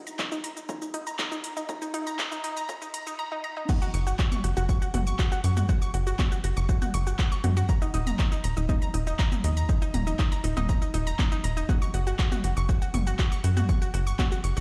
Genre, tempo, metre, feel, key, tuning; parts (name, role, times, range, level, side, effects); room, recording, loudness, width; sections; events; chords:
melodic techno; 120 BPM; 4/4; straight; A4 = 443 Hz
unison pluck; arpeggios; 0.1-14.6 s; D#4 to A#6; -35 LUFS; equal; sidechain pumping, digital delay
house drum kit; drums; 0.1-14.6 s; crash cymbal, handclaps, hi-hat, shaker, toms; -36 LUFS; equal; small room ambience
electronic kick drum; drums; 0.2-14.3 s; -28 LUFS; equal; high-pass filter on kick, small room ambience, high-pass filter on room
tight sequencer bass; bass; 3.9-14.6 s; D#1 to F#2; -28 LUFS; equal; tube saturation, sidechain pumping
light reverb; played on a big sound system in a bare room, stone room reverb, high-pass filter; -27 LUFS; mono
0.0-3.7 A section; 3.7-14.6 B section
build-up 0.0-3.7; filter sweep on synth arpeggio sound 0.0-3.7; drop 3.7-14.6
0.0 D#5; 3.7 F#5; 7.7 D#5; 11.7 F#5